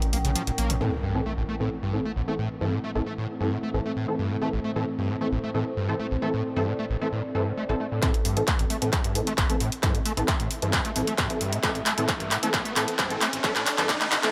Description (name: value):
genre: driving peak-time techno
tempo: 133 BPM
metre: 4/4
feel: straight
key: A minor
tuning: A4 = 438 Hz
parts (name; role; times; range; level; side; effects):
- metallic inharmonic drone; drone; 0.0-8.1 s; A2 to E3; -41 LUFS; equal; chorus, built-in reverb, sidechain pumping
- techno drum kit; drums; 0.0-0.8, 8.0-14.3 s; handclaps, hi-hat; -29 LUFS; equal; overdrive, low-pass filter on hats, low-pass filter on snare
- deep dark ambient pad; texture; 0.0-14.3 s; C4 to G5; -38 LUFS; equal; chorus, built-in reverb, sidechain pumping
- screaming distorted acid line; riff; 0.1-14.3 s; A1 to Bb3; -32 LUFS; equal; distortion, ensemble chorus, sidechain pumping, dub echo
- saturated sub bass; bass; 0.1-0.8 s; Bb1; -29 LUFS; equal; tube saturation, sidechain pumping, low-pass filter
- rave stab; stabs; 0.8-14.3 s; E3 to A4; -33 LUFS; equal; chorus, built-in reverb, sidechain pumping, dub echo
- impact and riser; sound effects; 0.8-2.6, 10.5-14.3 s; none; -37 LUFS; equal; none
- electronic kick drum; drums; 8.0-14.0 s; none; -30 LUFS; equal; distortion, overdrive
room: light reverb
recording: high-pass filter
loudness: -26 LUFS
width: mono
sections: 0.8-8.0 A section; 8.0-14.3 B section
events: kick drops out 0.4-0.8; impact 0.8-2.6; filter sweep on drum 0.8-8.0; filter sweep on synth stab 0.8-8.0, 8.0-14.3; build-up 8.0-14.3; drum fill 8.0-14.3; filter sweep on acid bass 8.0-14.3; filter sweep 8.0-14.3; riser 10.5-14.3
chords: 0.0 Bbm; 0.8 Am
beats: 0.36 | 0.81 1.26 1.71 2.16 | 2.61 3.06 3.51 3.97 | 4.42 4.87 5.32 5.77 | 6.22 6.67 7.12 7.58 | 8.03 8.48 8.93 9.38 | 9.83 10.28 10.73 11.18 | 11.63 12.09 12.54 12.99 | 13.44 13.89